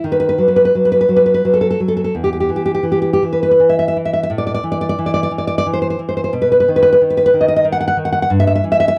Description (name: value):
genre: romantic piece for solo classical guitar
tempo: 77-93 BPM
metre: 3/4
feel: rubato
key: unclear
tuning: A4 = 441 Hz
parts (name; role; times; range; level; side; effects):
- nylon-string guitar; solo; 0.0-9.0 s; E2 to F#5; -15 LUFS; equal; none
room: little or no reverb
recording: dry, close 1970s-style studio recording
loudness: -15 LUFS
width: mono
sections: 0.0-9.0 A section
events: none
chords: 0.0 D#dim; 2.1 N.C.; 4.3 A5; 6.3 B; 8.3 Em/G